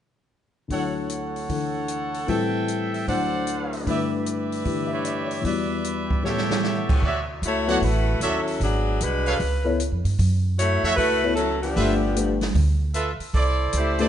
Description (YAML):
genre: jazz, big band swing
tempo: 152 BPM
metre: 4/4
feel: swing 65% on 8ths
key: D major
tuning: A4 = 441 Hz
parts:
  - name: dark baby grand piano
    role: accompaniment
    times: 0.7-14.1 s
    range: D2 to G5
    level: -26 LUFS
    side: left 5 dB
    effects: none
  - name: bright trumpet section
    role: stabs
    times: 0.7-14.1 s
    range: E4 to C#6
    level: -27 LUFS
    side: right 3 dB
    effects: none
  - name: open jazz drum kit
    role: drums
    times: 0.7-14.1 s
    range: crash cymbal, hi-hat, kick drum, snare drum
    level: -28 LUFS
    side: right 2 dB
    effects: none
  - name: upright bass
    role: bass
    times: 7.0-14.1 s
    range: G1 to G2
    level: -23 LUFS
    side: right 1 dB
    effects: none
  - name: warm saxophone section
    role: melody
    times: 7.5-14.1 s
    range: F3 to C#5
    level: -24 LUFS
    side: left 1 dB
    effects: none
room: moderate large studio reverb, RT60 1.5 s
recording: nothing above 10.6 kHz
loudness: -21 LUFS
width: side -10 dB against mid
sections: 0.7-7.0 A section; 7.0-14.1 B section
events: drum fill 6.2-6.6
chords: 0.7 Dmaj7; 2.3 Am7; 3.1 D7; 3.9 G6; 5.5 Em7; 6.2 A7; 7.0 Dmaj9; 8.6 G#m7b5; 9.4 C#7alt; 10.2 F#m7; 11.8 G13; 13.3 C69